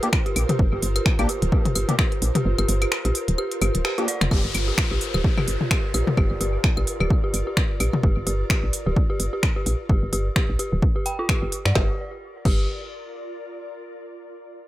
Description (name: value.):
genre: minimal techno.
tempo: 129 BPM.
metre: 4/4.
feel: swing 57% on 16ths.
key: G minor.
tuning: A4 = 440 Hz.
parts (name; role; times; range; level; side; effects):
percussive organ stab; stabs; 0.0-4.1 s; Bb3 to G4; -30 LUFS; left 1 dB; ensemble chorus, dub echo.
minimal click drum kit; drums; 0.0-12.6 s; crash cymbal, finger snaps, hi-hat, snare drum; -26 LUFS; equal; overdrive.
ethereal airy pad; texture; 0.0-13.6 s; F4 to D5; -33 LUFS; right 1 dB; ensemble chorus, built-in reverb, sidechain pumping.
electronic kick drum; drums; 0.1-12.6 s; none; -22 LUFS; equal; none.
electronic claves and toms; percussion; 0.1-8.0 s; none; -26 LUFS; left 3 dB; dub echo.
dark detuned synth bell; riff; 0.3-12.7 s; F4 to G5; -30 LUFS; equal; chorus, sidechain pumping, low-pass filter, dub echo.
woody FM bass; bass; 0.4-12.7 s; D1 to G2; -24 LUFS; equal; tube saturation, sidechain pumping.
downlifter; sound effects; 4.3-8.0 s; none; -33 LUFS; left 3 dB; none.
room: digital ambience.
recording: none.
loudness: -20 LUFS.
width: side -15 dB against mid.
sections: 0.0-4.3 A section; 4.3-11.8 B section; 11.8-13.6 C section.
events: drop 0.0-4.3; kick drops out 2.5-4.3; band accent 3.8; fade-out on ambient pad 4.3-11.8.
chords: 0.0 Gm.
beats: 0.13 | 0.59 1.06 1.52 1.99 | 2.45 2.92 3.38 3.85 | 4.31 4.78 5.24 5.71 | 6.17 6.64 7.10 7.57 | 8.03 8.50 8.96 9.43 | 9.89 10.36 10.82 11.29 | 11.76 12.22 12.69 13.15.